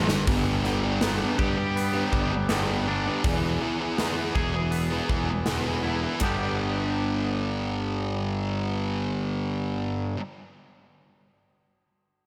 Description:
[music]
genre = quiet-loud alternative rock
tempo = 80 BPM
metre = 4/4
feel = straight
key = G major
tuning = A4 = 441 Hz
[part]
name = thick fuzz guitar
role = riff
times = 0.0-10.2 s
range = G2 to G#4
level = -31 LUFS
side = equal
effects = distortion
[part]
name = fuzz picked electric bass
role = bass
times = 0.0-10.1 s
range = E1 to G2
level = -31 LUFS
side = equal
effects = overdrive
[part]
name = big rock drum kit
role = drums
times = 0.1-6.4 s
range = hi-hat, kick drum, ride cymbal, snare drum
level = -32 LUFS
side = equal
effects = none
[part]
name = twangy electric guitar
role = arpeggios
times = 0.3-10.2 s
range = E2 to G#4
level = -35 LUFS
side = equal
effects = subtle chorus
[sound]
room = moderate lush hall reverb, RT60 2.9 s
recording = big arena sound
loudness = -27 LUFS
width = mono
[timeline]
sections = 0.3-6.2 A section; 6.2-9.2 B section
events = drum fill 0.0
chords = 0.3 G; 3.2 E; 6.2 G

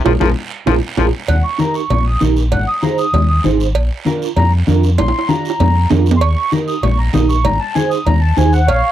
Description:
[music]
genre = latin, cumbia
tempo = 195 BPM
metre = 4/4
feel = straight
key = Eb major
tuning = A4 = 441 Hz
[part]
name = brilliant trombone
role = second line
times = 0.0-1.1 s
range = F3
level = -20 LUFS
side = left 13 dB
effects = none
[part]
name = mellow electric guitar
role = accompaniment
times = 0.0-8.6 s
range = D4 to C5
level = -17 LUFS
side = right 5 dB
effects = phaser
[part]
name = fingered electric bass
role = bass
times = 0.1-8.8 s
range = Ab1 to F2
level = -14 LUFS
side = equal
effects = none
[part]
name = congas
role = percussion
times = 0.1-8.8 s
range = none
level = -21 LUFS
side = left 6 dB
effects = none
[part]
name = guiro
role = percussion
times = 0.1-8.9 s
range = none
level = -31 LUFS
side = right 7 dB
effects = none
[part]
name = timbales and cowbell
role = percussion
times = 0.1-8.8 s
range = none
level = -21 LUFS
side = right 8 dB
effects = none
[part]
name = mellow accordion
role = melody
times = 1.3-8.9 s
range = Db5 to Eb6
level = -18 LUFS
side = equal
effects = none
[sound]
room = little or no reverb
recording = dry, close 1970s-style studio recording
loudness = -12 LUFS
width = side -12 dB against mid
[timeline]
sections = 0.0-1.3 A section; 1.3-8.9 B section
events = trombone solo 0.0-1.3; drum fill 0.1-1.3, 5.0-6.2; band accent 0.1-1.3; accordion solo 1.3-8.9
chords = 0.1 Bb5; 1.3 Eb; 2.5 Ab; 3.8 Bb; 6.2 Eb; 7.4 Ab

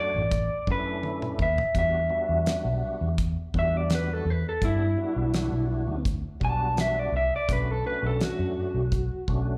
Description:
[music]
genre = straight-eighth soul blues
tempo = 84 BPM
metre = 4/4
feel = straight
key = unclear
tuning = A4 = 439 Hz
[part]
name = electric guitar through a small old amp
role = melody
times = 0.0-9.6 s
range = E4 to A5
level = -30 LUFS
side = equal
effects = slapback echo
[part]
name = tonewheel organ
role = accompaniment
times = 0.0-9.6 s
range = G3 to C#5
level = -38 LUFS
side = equal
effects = slow rotary speaker, overdrive, chorus vibrato, slapback echo
[part]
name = vintage muted fingered electric bass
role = bass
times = 0.0-9.6 s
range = A1 to G2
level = -30 LUFS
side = equal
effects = none
[part]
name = damped 70s drum kit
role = drums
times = 0.3-9.5 s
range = hi-hat, kick drum, snare drum, toms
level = -31 LUFS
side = equal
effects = none
[sound]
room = little or no reverb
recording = live gig heard through the venue's PA, club reverb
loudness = -27 LUFS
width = mono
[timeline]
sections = 0.0-9.6 A section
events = clean electric guitar solo 0.0-9.6; drum fill 1.0-1.8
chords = 0.0 Bm7; 1.8 Em7; 7.5 Bm7

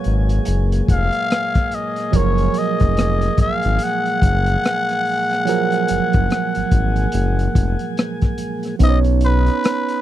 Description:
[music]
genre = R&B, neo-soul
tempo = 72 BPM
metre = 4/4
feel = swing 60% on 16ths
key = F# major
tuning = A4 = 440 Hz
[part]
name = barky tine electric piano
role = accompaniment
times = 0.0-10.0 s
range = E#3 to E#5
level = -23 LUFS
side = right 13 dB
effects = overdrive
[part]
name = tonewheel organ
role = sustained chords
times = 0.0-8.8 s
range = A#2 to G#4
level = -27 LUFS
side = left 2 dB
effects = slow rotary speaker
[part]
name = crunchy breakbeat drum kit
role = drums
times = 0.0-10.0 s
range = hi-hat, kick drum, rim click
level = -19 LUFS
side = left 1 dB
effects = none
[part]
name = smooth synth bass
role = bass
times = 0.1-9.5 s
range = E#1 to B1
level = -18 LUFS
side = left 1 dB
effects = none
[part]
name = trumpet with cup mute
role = melody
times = 0.9-10.0 s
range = B4 to F#5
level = -22 LUFS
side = left 2 dB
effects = tape echo
[sound]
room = little or no reverb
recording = dry, close 1970s-style studio recording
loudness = -16 LUFS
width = side -13 dB against mid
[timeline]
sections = 0.0-8.8 A section; 8.8-10.0 B section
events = none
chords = 0.0 F#maj9; 8.8 Badd9

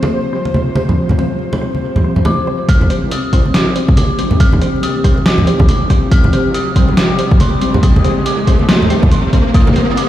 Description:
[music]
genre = deep dubstep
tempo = 140 BPM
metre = 4/4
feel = swing 60% on 16ths, half-time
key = C minor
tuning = A4 = 445 Hz
[part]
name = bowed-like drone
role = sustained chords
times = 0.0-10.1 s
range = C3 to C5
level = -20 LUFS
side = equal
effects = built-in reverb
[part]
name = filtered dub chord stab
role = stabs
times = 0.0-9.9 s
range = G3 to C5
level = -23 LUFS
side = left 1 dB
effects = phaser, dub echo
[part]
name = congas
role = percussion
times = 0.0-9.7 s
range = none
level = -16 LUFS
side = right 1 dB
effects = none
[part]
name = flickering grainy texture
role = texture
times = 0.0-2.7 s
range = C5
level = -28 LUFS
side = left 2 dB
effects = built-in reverb
[part]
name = dark detuned synth bell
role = melody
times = 2.3-10.1 s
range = C6 to F6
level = -22 LUFS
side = equal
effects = chorus, phaser, vintage 12-bit sampler grit, dub echo
[part]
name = wobble bass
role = bass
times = 2.7-10.1 s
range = G1 to Eb2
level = -25 LUFS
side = left 1 dB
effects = chorus, tube saturation, high-pass filter
[part]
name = electronic kick drum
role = drums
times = 2.7-9.6 s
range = none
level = -12 LUFS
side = equal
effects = overdrive
[part]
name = trip hop sampler-style drum kit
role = drums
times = 2.7-10.1 s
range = hi-hat, snare drum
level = -18 LUFS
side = equal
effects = overdrive
[part]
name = riser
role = sound effects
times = 4.2-10.1 s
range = none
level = -21 LUFS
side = left 1 dB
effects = none
[sound]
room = light reverb, digital ambience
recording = played on a big sound system in a bare room, large studio reverb, vinyl crackle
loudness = -10 LUFS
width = side -13 dB against mid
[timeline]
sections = 0.0-2.7 A section; 2.7-10.1 B section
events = filter sweep on synth drone 0.0-2.7; build-up 2.7-10.1; riser 4.2-10.1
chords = 0.0 C5

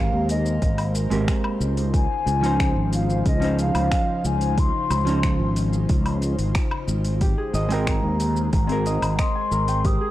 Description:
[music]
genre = sunset chillout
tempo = 91 BPM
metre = 4/4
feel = straight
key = unclear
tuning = A4 = 440 Hz
[part]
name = baroque flute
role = melody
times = 0.0-10.1 s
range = Eb5 to Eb6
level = -27 LUFS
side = left 2 dB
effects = vintage 12-bit sampler grit, tape echo
[part]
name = hollow-body jazz guitar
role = accompaniment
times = 0.0-10.1 s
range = F3 to G5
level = -27 LUFS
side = moving between left 4 dB and right 4 dB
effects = auto-pan, analog delay
[part]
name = airy breathy pad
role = sustained chords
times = 0.0-10.1 s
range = Db3 to C5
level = -33 LUFS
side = left 2 dB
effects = chorus
[part]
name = sustaining fretless electric bass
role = bass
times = 0.0-10.0 s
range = Ab1 to Eb2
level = -23 LUFS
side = equal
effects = ensemble chorus
[part]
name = deep house drum kit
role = drums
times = 0.3-10.0 s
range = finger snaps, hi-hat, shaker, woodblock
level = -32 LUFS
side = left 1 dB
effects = overdrive, small room ambience
[part]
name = electronic kick drum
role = drums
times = 0.6-10.0 s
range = none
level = -23 LUFS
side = equal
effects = overdrive, small room ambience
[part]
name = Celtic harp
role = arpeggios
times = 7.2-10.1 s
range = G4 to Ab5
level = -31 LUFS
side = equal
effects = none
[sound]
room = digital ambience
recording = dry, gritty hardware recording, cassette tape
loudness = -19 LUFS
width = side -14 dB against mid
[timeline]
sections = 0.0-10.1 A section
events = none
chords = 0.0 Abmaj9; 1.6 Dbmaj9; 7.2 Abmaj9

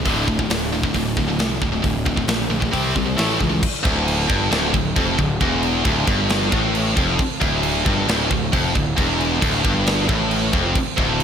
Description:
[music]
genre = heavy metal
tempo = 134 BPM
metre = 4/4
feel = straight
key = D minor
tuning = A4 = 439 Hz
[part]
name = heavy high-gain guitar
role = riff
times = 0.0-11.2 s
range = D2 to C4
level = -20 LUFS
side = equal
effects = distortion
[part]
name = fuzz picked electric bass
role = bass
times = 0.0-11.2 s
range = D1 to C#2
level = -24 LUFS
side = equal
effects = overdrive
[part]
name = tight metal drum kit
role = drums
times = 0.1-11.2 s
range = crash cymbal, hi-hat, kick drum, snare drum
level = -22 LUFS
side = equal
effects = none
[sound]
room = moderate lush hall reverb, RT60 1.8 s, studio ambience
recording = big arena sound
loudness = -17 LUFS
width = side -8 dB against mid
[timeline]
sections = 0.0-3.6 A section; 3.6-11.2 B section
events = half time 3.6-11.2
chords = 0.1 D5; 2.7 C5; 3.2 A5; 3.6 Dm

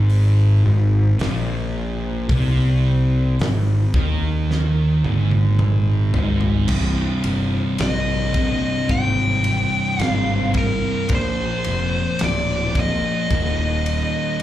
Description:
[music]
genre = stoner and doom metal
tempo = 54 BPM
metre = 4/4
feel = straight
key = C minor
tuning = A4 = 435 Hz
[part]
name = thick fuzz guitar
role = riff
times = 0.0-14.4 s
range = C2 to Bb3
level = -24 LUFS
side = left 4 dB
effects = distortion
[part]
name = thick fuzz guitar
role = riff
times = 0.0-14.4 s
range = C2 to Bb3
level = -23 LUFS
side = right 4 dB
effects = distortion
[part]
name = fuzz picked electric bass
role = bass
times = 0.0-14.0 s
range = C1 to Eb2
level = -21 LUFS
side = equal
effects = overdrive, tube saturation
[part]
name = big rock drum kit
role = drums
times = 0.1-14.4 s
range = crash cymbal, hi-hat, kick drum, ride cymbal, snare drum, toms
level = -25 LUFS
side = equal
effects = none
[part]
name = fuzz lead guitar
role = melody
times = 7.8-14.4 s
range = Bb4 to G5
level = -23 LUFS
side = left 1 dB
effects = distortion, slapback echo, ping-pong delay
[sound]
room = little or no reverb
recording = live gig heard through the venue's PA, club reverb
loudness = -17 LUFS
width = side -13 dB against mid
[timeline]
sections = 0.0-6.7 A section; 6.7-14.4 B section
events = drum fill 4.5-6.7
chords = 0.0 Ab5; 6.7 Cm; 11.1 Bb; 13.3 Eb5

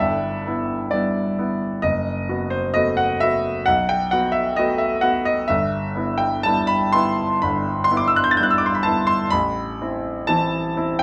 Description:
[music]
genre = classical, romantic nocturne for solo piano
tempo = 64 BPM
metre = 4/4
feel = rubato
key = E minor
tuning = A4 = 441 Hz
[part]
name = clear grand piano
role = solo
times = 0.0-11.0 s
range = F#1 to A6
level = -21 LUFS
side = equal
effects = none
[sound]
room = wet stone room reverb, RT60 1.0 s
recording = none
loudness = -21 LUFS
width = mono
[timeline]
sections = 0.0-11.0 A section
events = none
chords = 0.0 Em/G; 1.8 B5/F#; 5.5 Em/G; 9.3 Am

